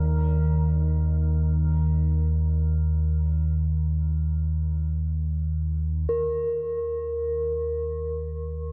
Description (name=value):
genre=dark ambient drone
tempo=free time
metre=none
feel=none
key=unclear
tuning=A4 = 440 Hz
part: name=tubular bells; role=arpeggios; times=0.0-6.1 s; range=Bb4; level=-50 LUFS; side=equal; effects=diffuse ambient delay
part: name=deep rumbling drone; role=drone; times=0.0-8.7 s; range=Eb2 to Eb3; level=-26 LUFS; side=equal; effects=built-in reverb
part: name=quartz singing bowl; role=texture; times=6.1-8.7 s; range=Bb4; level=-29 LUFS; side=equal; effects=none
room=moderate huge ambient reverb, RT60 8.8 s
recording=dark, warm production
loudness=-25 LUFS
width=mono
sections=0.0-6.1 A section; 6.1-8.7 B section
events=filter sweep on synth drone 6.1-8.7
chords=0.0 Ebsus2; 6.1 Eb5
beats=free time